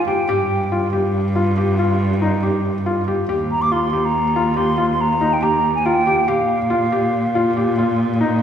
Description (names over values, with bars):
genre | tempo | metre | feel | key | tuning
contemporary instrumental, contemporary | 140 BPM | 7/4 | straight | Eb major | A4 = 438 Hz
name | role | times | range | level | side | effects
hollow concert flute | melody | 0.0-8.0 s | F5 to D6 | -20 LUFS | right 1 dB | none
rich cello | bass | 0.0-8.4 s | Eb2 to Bb2 | -20 LUFS | equal | none
felt-muted upright piano | arpeggios | 0.1-8.4 s | Eb4 to G4 | -20 LUFS | left 2 dB | none
room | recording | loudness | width
wet concert hall reverb, RT60 2.3 s | recorded in a church or concert hall | -16 LUFS | side -8 dB against mid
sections
0.0-8.4 A section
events
none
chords
0.3 Ebadd9/G (rootless); 3.3 Eb; 6.3 Bb5